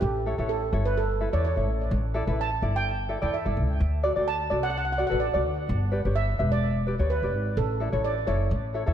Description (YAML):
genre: calypso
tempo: 127 BPM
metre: 4/4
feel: swing 53% on 16ths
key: unclear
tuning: A4 = 440 Hz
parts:
  - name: steel pan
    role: melody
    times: 0.0-8.9 s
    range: G4 to A5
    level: -30 LUFS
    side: right 5 dB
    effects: diffuse ambient delay
  - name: tenor ukulele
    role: accompaniment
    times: 0.0-8.9 s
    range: E4 to E5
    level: -30 LUFS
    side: left 2 dB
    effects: none
  - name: upright bass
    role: bass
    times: 0.0-8.9 s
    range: E1 to E2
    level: -26 LUFS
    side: equal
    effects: none
room: moderate lush hall reverb, RT60 1.6 s, studio reverb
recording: dreamy mix soaked in reverb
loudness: -24 LUFS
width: side -10 dB against mid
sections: 0.0-8.9 A section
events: none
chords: 0.0 A7; 1.9 A7sus4; 3.8 D7; 5.7 G; 7.6 Asus4